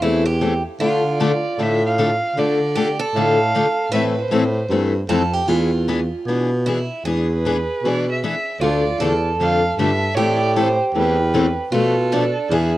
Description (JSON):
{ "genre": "acoustic string swing (jazz manouche)", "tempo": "154 BPM", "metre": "4/4", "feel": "swing 62% on 8ths", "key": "A minor", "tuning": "A4 = 439 Hz", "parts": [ { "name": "picked steel-string acoustic guitar", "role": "second line", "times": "0.0-12.8 s", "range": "D4 to B4", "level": "-23 LUFS", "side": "right 3 dB", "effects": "none" }, { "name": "picked steel-string acoustic guitar", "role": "accompaniment", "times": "0.0-12.7 s", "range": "B2 to A4", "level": "-22 LUFS", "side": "left 4 dB", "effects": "none" }, { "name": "breathy baritone saxophone", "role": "bass", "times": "0.0-12.8 s", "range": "D2 to D3", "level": "-20 LUFS", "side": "equal", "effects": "none" }, { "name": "warm violin", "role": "melody", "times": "1.1-4.9, 7.3-12.8 s", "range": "G#4 to F5", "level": "-24 LUFS", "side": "right 2 dB", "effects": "none" } ], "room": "light reverb, small room ambience", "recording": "rough home demo mix, cassette tape", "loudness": "-16 LUFS", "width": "side -15 dB against mid", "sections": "0.0-12.8 A section", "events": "none", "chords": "0.0 Am; 0.8 Dm; 3.9 Am; 5.5 E7b9; 8.6 Dm; 10.2 Am; 11.7 Bm7b5" }